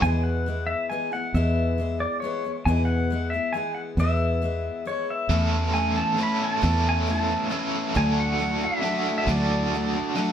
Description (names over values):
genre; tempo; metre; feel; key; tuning
rock; 136 BPM; 3/4; straight; unclear; A4 = 440 Hz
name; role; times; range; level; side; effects
pedal steel guitar; melody; 0.0-10.1 s; C#5 to B5; -28 LUFS; left 1 dB; none
picked steel-string acoustic guitar; accompaniment; 0.0-10.3 s; E2 to E4; -31 LUFS; left 3 dB; none
fingered electric bass; bass; 0.0-10.0 s; D2 to E2; -24 LUFS; equal; none
biting overdriven guitar; riff; 5.3-10.3 s; E2 to A4; -26 LUFS; right 2 dB; tremolo
room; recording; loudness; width
moderate stone room reverb, RT60 1.0 s; band playing live in one room; -22 LUFS; side -9 dB against mid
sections
0.0-10.3 A section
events
none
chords
0.0 E; 5.3 A/E; 7.9 Dadd9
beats
| 0.01 0.45 0.90 | 1.34 1.78 2.22 | 2.66 3.10 3.54 | 3.98 4.42 4.86 | 5.30 5.74 6.18 | 6.62 7.07 7.51 | 7.95 8.39 8.83 | 9.27 9.72 10.16